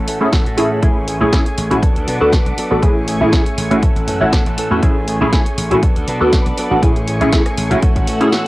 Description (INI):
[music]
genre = filtered disco house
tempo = 120 BPM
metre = 4/4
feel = swing 54% on 16ths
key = A major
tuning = A4 = 440 Hz
[part]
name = string machine, full ensemble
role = sustained chords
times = 0.0-8.5 s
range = A3 to E6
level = -25 LUFS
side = equal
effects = ensemble chorus, sidechain pumping, low-pass filter, cassette tape
[part]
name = direct-recorded clean electric guitar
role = riff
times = 0.0-8.5 s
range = E3 to A4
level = -23 LUFS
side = right 1 dB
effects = sidechain pumping, low-pass filter, cassette tape
[part]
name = slap bass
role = bass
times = 0.0-8.1 s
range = A1 to B2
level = -21 LUFS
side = equal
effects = sidechain pumping, low-pass filter
[part]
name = punchy analog drum machine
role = drums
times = 0.1-8.4 s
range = hi-hat, rim click, snare drum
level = -23 LUFS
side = equal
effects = none
[part]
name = funky polysynth comp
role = accompaniment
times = 0.2-8.3 s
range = A3 to A4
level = -15 LUFS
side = equal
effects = chorus, phaser, sidechain pumping, low-pass filter, cassette tape
[part]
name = electronic kick drum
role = drums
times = 0.3-8.1 s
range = none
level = -15 LUFS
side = equal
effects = none
[sound]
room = light reverb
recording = home recording on cassette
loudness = -12 LUFS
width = side -18 dB against mid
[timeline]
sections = 0.0-8.5 A section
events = none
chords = 0.0 Amaj7; 1.8 D6; 2.8 Amaj7; 3.8 F#m7/A; 4.8 Amaj7; 5.8 D6; 6.8 Amaj7